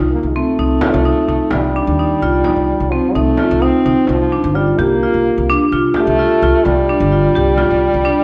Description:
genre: contemporary instrumental, chamber music in an uneven meter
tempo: 257 BPM (eighths)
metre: 11/8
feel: straight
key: unclear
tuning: A4 = 440 Hz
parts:
  - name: marimba with hard mallets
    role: arpeggios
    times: 0.0-8.2 s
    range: C4 to G4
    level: -17 LUFS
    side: equal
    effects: none
  - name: upright bass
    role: bass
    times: 0.0-8.1 s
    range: G1 to Eb2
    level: -21 LUFS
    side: equal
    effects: none
  - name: mellow French horn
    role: second line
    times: 0.1-8.2 s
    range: F3 to C4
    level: -20 LUFS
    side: equal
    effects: none
  - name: frame drum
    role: percussion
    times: 0.3-7.8 s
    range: none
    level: -27 LUFS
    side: equal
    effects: none
room: wet recital hall reverb, RT60 1.5 s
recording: none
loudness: -14 LUFS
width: mono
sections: 0.0-8.2 A section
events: none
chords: 0.0 F7/C (rootless); 4.1 Bb69

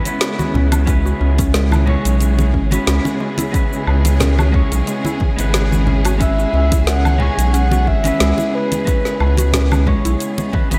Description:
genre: organic downtempo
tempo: 90 BPM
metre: 4/4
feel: swing 54% on 16ths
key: C# minor pentatonic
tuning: A4 = 438 Hz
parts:
  - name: clean electric guitar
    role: accompaniment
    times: 0.0-10.8 s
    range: G#3 to C#5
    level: -26 LUFS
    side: equal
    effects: sidechain pumping, diffuse ambient delay
  - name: rich studio string section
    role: sustained chords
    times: 0.0-10.8 s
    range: C#3 to G#4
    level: -27 LUFS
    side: equal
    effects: sidechain pumping
  - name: deep house drum kit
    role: drums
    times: 0.1-10.8 s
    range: cabasa, hi-hat, snare drum, woodblock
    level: -25 LUFS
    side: equal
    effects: none
  - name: congas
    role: percussion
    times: 0.1-10.8 s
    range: none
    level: -26 LUFS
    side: equal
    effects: none
  - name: mallet-like synth pluck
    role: arpeggios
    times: 0.2-10.2 s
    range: G#3 to F#4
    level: -28 LUFS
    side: equal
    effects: chorus, diffuse ambient delay
  - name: round analog bass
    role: bass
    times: 0.5-10.8 s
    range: G#1 to C#2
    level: -18 LUFS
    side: equal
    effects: tube saturation, sidechain pumping
  - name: electronic kick drum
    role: drums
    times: 0.9-10.7 s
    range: none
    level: -21 LUFS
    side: equal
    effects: none
  - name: breathy flute-like synth lead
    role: melody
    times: 6.2-9.9 s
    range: B4 to G#5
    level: -25 LUFS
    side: equal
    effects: chorus, vintage 12-bit sampler grit, diffuse ambient delay
room: light reverb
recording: none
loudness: -16 LUFS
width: mono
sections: 0.0-10.8 A section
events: none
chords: 0.0 C#m7

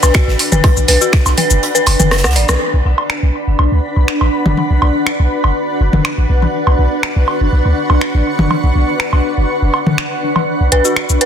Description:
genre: minimal techno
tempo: 122 BPM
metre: 4/4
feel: straight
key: B minor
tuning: A4 = 440 Hz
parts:
  - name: dark detuned synth bell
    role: riff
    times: 0.0-2.5, 10.7-11.2 s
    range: F#4 to F#5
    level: -17 LUFS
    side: left 1 dB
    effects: chorus, sidechain pumping, low-pass filter, ping-pong delay
  - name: punchy sub bass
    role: bass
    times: 0.0-11.2 s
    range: F#1 to D2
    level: -13 LUFS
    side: equal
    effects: sidechain pumping
  - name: garage drum kit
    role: drums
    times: 0.0-11.3 s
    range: cabasa, finger snaps, hi-hat, rim click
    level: -18 LUFS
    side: left 1 dB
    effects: soft clipping on snare
  - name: huge arena drum kit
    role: drums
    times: 0.0-2.6 s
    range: hi-hat, snare drum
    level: -25 LUFS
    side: right 4 dB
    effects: sidechain pumping on hats, high-pass filter on hats, high-pass filter on snare, high-pass filter on room
  - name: electronic woodblock and toms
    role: percussion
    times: 0.0-10.5 s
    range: none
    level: -17 LUFS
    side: equal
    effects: ping-pong delay
  - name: granular cloud pad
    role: texture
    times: 0.0-11.3 s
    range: D4 to C#6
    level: -18 LUFS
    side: equal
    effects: built-in reverb, sidechain pumping
  - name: electronic kick drum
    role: drums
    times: 0.1-1.2 s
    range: none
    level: -11 LUFS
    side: equal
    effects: none
room: light reverb, digital ambience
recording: dense, heavily limited modern master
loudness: -11 LUFS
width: side -8 dB against mid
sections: 0.0-2.6 A section; 2.6-10.5 B section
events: drop 0.0-2.6; kick drops out 1.6-2.6; drum fill 2.1-2.6; band accent 2.5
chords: 0.0 Bm

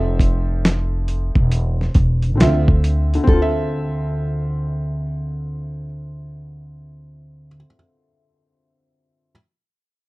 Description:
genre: lo-fi hip hop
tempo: 68 BPM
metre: 4/4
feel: swing 64% on 16ths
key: D minor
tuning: A4 = 439 Hz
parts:
  - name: felt-muted upright piano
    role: accompaniment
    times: 0.0-9.3 s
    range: D3 to E5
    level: -26 LUFS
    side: equal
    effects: cassette tape
  - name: upright bass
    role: bass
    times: 0.0-7.6 s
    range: E1 to D2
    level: -20 LUFS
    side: equal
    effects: none
  - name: dusty soul sampler-style drum kit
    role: drums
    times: 0.2-3.5 s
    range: hi-hat, kick drum, snare drum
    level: -16 LUFS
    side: equal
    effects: overdrive
  - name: nylon-string guitar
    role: melody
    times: 3.3-5.9 s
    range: A4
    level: -26 LUFS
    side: left 3 dB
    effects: none
room: little or no reverb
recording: rough home demo mix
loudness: -17 LUFS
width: side -22 dB against mid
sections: 0.0-3.3 A section; 3.3-6.8 B section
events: none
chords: 0.0 Fmaj7; 2.4 Dm9

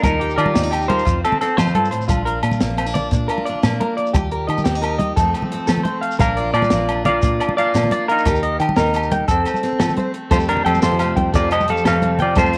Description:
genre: highlife guitar band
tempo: 117 BPM (dotted quarters)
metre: 12/8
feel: straight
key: unclear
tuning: A4 = 437 Hz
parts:
  - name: semi-hollow electric guitar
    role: melody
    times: 0.0-2.0, 6.2-12.6 s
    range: C4 to F5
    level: -22 LUFS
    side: equal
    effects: tape echo
  - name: picked steel-string acoustic guitar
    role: accompaniment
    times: 0.0-12.6 s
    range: F2 to A4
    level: -28 LUFS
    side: equal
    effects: none
  - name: electric guitar through a small old amp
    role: arpeggios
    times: 0.0-12.5 s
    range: Eb4 to G5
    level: -26 LUFS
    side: equal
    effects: lush chorus, tape echo
  - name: fingered electric bass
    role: bass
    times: 0.0-12.6 s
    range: Bb1 to F3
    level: -25 LUFS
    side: equal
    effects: none
  - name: compact cocktail drum kit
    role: drums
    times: 0.0-12.6 s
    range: hi-hat, kick drum, snare drum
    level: -25 LUFS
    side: equal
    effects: none
  - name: agogo bells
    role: percussion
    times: 0.0-12.5 s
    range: none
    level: -31 LUFS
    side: equal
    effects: none
  - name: congas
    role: percussion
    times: 0.0-12.6 s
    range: none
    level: -28 LUFS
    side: equal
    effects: none
  - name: shekere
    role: percussion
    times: 0.0-12.6 s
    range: none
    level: -32 LUFS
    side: equal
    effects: none
room: moderate spring reverb, RT60 1.4 s, small room ambience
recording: none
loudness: -18 LUFS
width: mono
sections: 0.0-10.3 A section; 10.3-12.6 B section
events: none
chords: 0.0 Eb; 1.1 F; 2.1 Bb; 4.1 Eb; 5.2 F; 6.2 Bb; 8.3 Eb; 9.3 F; 10.3 Fadd9

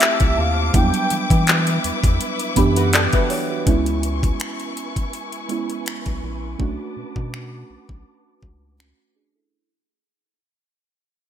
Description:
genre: contemporary R&B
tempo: 82 BPM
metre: 4/4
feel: swing 54% on 16ths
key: C# phrygian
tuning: A4 = 441 Hz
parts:
  - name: gliding portamento lead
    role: melody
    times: 0.0-1.5 s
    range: E5 to G5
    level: -23 LUFS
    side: equal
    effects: chorus, ping-pong delay
  - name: muted felt-like synth keys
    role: accompaniment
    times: 0.0-9.7 s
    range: E3 to G5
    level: -24 LUFS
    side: right 5 dB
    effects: chorus, low-pass filter
  - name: warm studio string section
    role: sustained chords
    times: 0.0-9.5 s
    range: F3 to D6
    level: -28 LUFS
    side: left 4 dB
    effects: low-pass filter
  - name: smooth R&B drum kit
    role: drums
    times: 0.0-9.0 s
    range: finger snaps, handclaps, hi-hat, kick drum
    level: -20 LUFS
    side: left 1 dB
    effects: gated reverb
  - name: soft synth bell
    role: texture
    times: 0.0-4.0 s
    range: A5 to B5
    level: -34 LUFS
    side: left 6 dB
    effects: none
  - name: rubbery square bass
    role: bass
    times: 0.2-8.9 s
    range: A#1 to E3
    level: -22 LUFS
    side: equal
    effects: none
  - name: flamenco guitar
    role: arpeggios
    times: 2.8-3.6 s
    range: F#4 to D5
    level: -27 LUFS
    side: left 3 dB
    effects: analog chorus, ping-pong delay
room: light reverb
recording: bright 1980s-style digital production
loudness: -18 LUFS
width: side -10 dB against mid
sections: 0.0-3.7 A section; 3.7-9.5 B section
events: fade-out 3.7-9.5; filter sweep 3.7-9.5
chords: 0.0 Dm7; 0.7 Em7; 3.7 C#m7; 6.6 Bm7

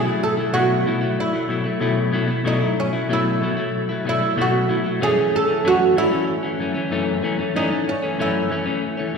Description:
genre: indie pop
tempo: 94 BPM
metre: 4/4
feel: straight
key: unclear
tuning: A4 = 440 Hz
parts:
  - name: semi-hollow electric guitar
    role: accompaniment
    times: 0.0-9.2 s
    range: F#2 to E4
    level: -21 LUFS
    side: left 3 dB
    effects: vibrato effect
  - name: oud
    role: melody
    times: 0.2-8.8 s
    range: C#4 to A4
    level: -22 LUFS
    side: right 3 dB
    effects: none
room: wet concert hall reverb, RT60 2.0 s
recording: recorded in a church or concert hall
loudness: -18 LUFS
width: side -5 dB against mid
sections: 0.0-9.2 A section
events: none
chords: 0.0 B7sus4; 5.0 F#m7

